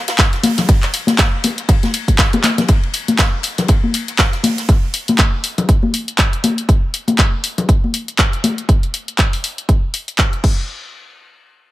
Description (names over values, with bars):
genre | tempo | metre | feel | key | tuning
house | 120 BPM | 4/4 | swing 57% on 16ths | none | none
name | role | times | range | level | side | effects
house drum kit | drums | 0.1-10.6 s | crash cymbal, handclaps, hi-hat | -18 LUFS | left 1 dB | none
swinging big-band drum kit | drums | 0.1-4.7 s | hi-hat, ride cymbal, snare drum | -26 LUFS | left 1 dB | high-pass filter on cymbals, high-pass filter on hats, high-pass filter on snare, high-pass filter on room, analog delay
electronic kick drum | drums | 0.2-10.6 s | none | -13 LUFS | equal | none
congas | percussion | 0.4-8.6 s | none | -18 LUFS | left 3 dB | none
room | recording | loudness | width
small room reverb | echo-heavy mix | -13 LUFS | side -16 dB against mid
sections
0.0-2.7 A section; 2.7-10.7 B section; 10.7-11.7 C section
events
drum fill 2.4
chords
none